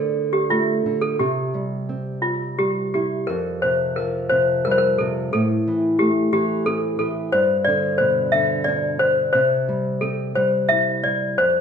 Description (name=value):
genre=children's music, lullaby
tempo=88 BPM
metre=3/4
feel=rubato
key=F major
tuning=A4 = 440 Hz
part: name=toy piano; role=melody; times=0.0-11.6 s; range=F4 to E5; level=-20 LUFS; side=left 2 dB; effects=slapback echo
part: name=nylon-string guitar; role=accompaniment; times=0.0-11.6 s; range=F2 to E4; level=-23 LUFS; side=right 2 dB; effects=none
room=moderate recital hall reverb, RT60 1.4 s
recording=nothing above 10.9 kHz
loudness=-18 LUFS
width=side -7 dB against mid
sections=0.0-3.3 A section; 3.3-11.6 A section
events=none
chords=0.0 D5; 1.2 C; 3.3 Fsus2; 5.3 Am; 7.3 G; 9.3 C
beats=0.51 | 1.19 1.89 2.60 | 3.29 3.97 4.65 | 5.33 6.00 6.66 | 7.33 7.99 8.66 | 9.33 10.01 10.69 | 11.38